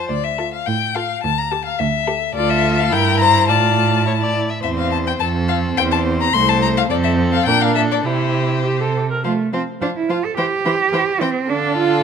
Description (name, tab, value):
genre	quick classical-period movement for string quartet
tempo	106 BPM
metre	2/4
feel	rubato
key	D minor, F major from 4.6 s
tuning	A4 = 440 Hz
part	rich violin	melody	0.0-12.0 s	C5 to C6	-19 LUFS	left 10 dB	none
part	rich violin	second line	0.0-12.0 s	G4 to E5	-25 LUFS	left 4 dB	none
part	rich cello	bass	0.1-12.0 s	C2 to A4	-20 LUFS	right 5 dB	none
part	warm viola	accompaniment	0.4-12.0 s	D3 to Bb4	-23 LUFS	right 2 dB	none
room	light reverb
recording	close, detailed microphones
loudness	-15 LUFS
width	side -7 dB against mid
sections	0.1-9.2 A section; 9.2-12.0 B section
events	none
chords	0.1 Dm; 1.2 A5/D; 2.4 Dm; 2.9 Edim/G; 3.5 Dm/A; 4.1 A5; 4.6 C/E; 5.2 F; 5.8 C/E; 6.9 F; 7.5 Bb; 8.1 C; 9.2 F; 10.4 C/E; 11.5 Dm